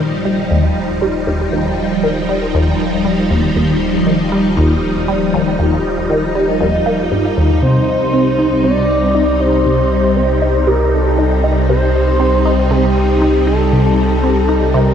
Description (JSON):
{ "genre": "ambient, sequencer-driven space music", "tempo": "118 BPM", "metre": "4/4", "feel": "straight", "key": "unclear", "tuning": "A4 = 440 Hz", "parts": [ { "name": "phased string machine", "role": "sustained chords", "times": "0.0-14.9 s", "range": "C3 to Eb4", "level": "-16 LUFS", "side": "equal", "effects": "ensemble chorus, phaser, shimmer reverb" }, { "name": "resonant blip pluck", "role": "riff", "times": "0.0-14.9 s", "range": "Eb2 to Eb4", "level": "-17 LUFS", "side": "equal", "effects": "phaser, tape echo" }, { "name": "warm sub bass", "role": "bass", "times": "0.0-14.9 s", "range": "Eb1 to C2", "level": "-20 LUFS", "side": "equal", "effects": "tube saturation" }, { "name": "expressive synth lead", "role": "melody", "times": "7.6-14.9 s", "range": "G4 to D5", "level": "-17 LUFS", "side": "equal", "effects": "chorus, shimmer reverb, tape echo" } ], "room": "wet huge ambient reverb, RT60 7.9 s", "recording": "dark, warm production", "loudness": "-12 LUFS", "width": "side -8 dB against mid", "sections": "0.0-14.9 A section", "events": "fade-in on sub bass 0.0-14.9", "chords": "0.0 Ebadd9; 7.6 Cm" }